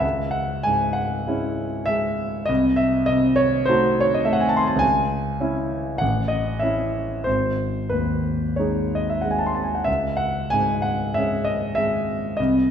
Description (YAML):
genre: classical, romantic nocturne for solo piano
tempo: 45-53 BPM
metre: 4/4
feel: rubato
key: C# minor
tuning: A4 = 439 Hz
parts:
  - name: warm concert grand piano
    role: solo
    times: 0.0-12.7 s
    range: G#1 to C6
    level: -20 LUFS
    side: equal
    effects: none
room: wet recital hall reverb, RT60 1.5 s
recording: recorded in a church or concert hall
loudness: -20 LUFS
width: side -8 dB against mid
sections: 0.0-12.7 A section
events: none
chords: 0.0 C#m; 2.5 Cdim7; 4.8 C#m; 6.0 A; 7.3 G#5; 9.9 C#5